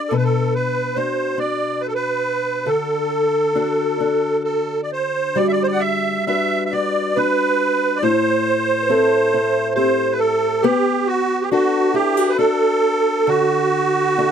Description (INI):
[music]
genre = celtic folk, Celtic slow air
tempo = 64-71 BPM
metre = 3/4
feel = rubato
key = unclear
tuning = A4 = 444 Hz
[part]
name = musette accordion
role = melody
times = 0.0-14.3 s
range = F#4 to F#5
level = -18 LUFS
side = right 3 dB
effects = none
[part]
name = fingerpicked acoustic archtop guitar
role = accompaniment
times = 0.0-14.3 s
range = A2 to B4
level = -22 LUFS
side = left 6 dB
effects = none
[part]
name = marimba with soft mallets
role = second line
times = 5.4-14.3 s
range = E4 to B4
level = -22 LUFS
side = right 1 dB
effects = none
[sound]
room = light reverb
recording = dark, warm production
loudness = -16 LUFS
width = side -8 dB against mid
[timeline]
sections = 0.0-5.4 A section; 5.4-14.3 B section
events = none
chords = 0.1 Bm; 2.7 D; 5.4 Gmaj7; 8.0 Am7; 10.6 Bm7; 13.3 Dadd9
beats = | 0.11 0.96 1.80 | 2.66 3.55 4.46 | 5.37 6.28 7.17 | 8.03 8.90 9.77 | 10.64 11.51 12.38 | 13.27 14.17